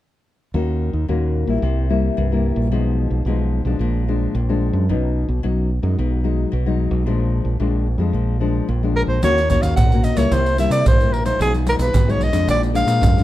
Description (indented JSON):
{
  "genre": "samba and choro",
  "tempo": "110 BPM",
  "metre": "4/4",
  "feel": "straight",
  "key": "Eb minor",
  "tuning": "A4 = 441 Hz",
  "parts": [
    { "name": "nylon-string guitar", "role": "accompaniment", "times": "0.5-13.2 s", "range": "F2 to Gb4", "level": "-22 LUFS", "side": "left 4 dB", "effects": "none" },
    { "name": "modern bright fingered electric bass", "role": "bass", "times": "0.5-13.2 s", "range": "Bb1 to C3", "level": "-19 LUFS", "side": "right 1 dB", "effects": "none" },
    { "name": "breathy soprano saxophone", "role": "melody", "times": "9.0-13.2 s", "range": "Ab4 to Gb5", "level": "-20 LUFS", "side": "equal", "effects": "none" },
    { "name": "tube shaker, surdo and pandeiro", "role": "percussion", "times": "9.2-13.2 s", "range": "none", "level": "-19 LUFS", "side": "right 1 dB", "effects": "none" }
  ],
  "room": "light reverb",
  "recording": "dark, warm production",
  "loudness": "-16 LUFS",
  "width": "side -14 dB against mid",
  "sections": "0.5-9.2 A section; 9.2-13.2 B section",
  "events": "none",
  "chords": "0.5 Ebm7; 1.6 C7; 2.7 Fm7b5/Cb; 3.8 Bb7; 4.9 Badd9; 6.0 Abm7/Cb; 7.1 Bb7; 9.2 Ebm7; 10.3 C7; 11.4 Fm7b5/Cb; 12.5 Bb7",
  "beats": "| 0.54 1.09 1.63 2.17 | 2.72 3.26 3.80 4.35 | 4.89 5.43 5.97 6.52 | 7.06 7.60 8.15 8.69 | 9.23 9.77 10.32 10.86 | 11.40 11.94 12.48 13.03"
}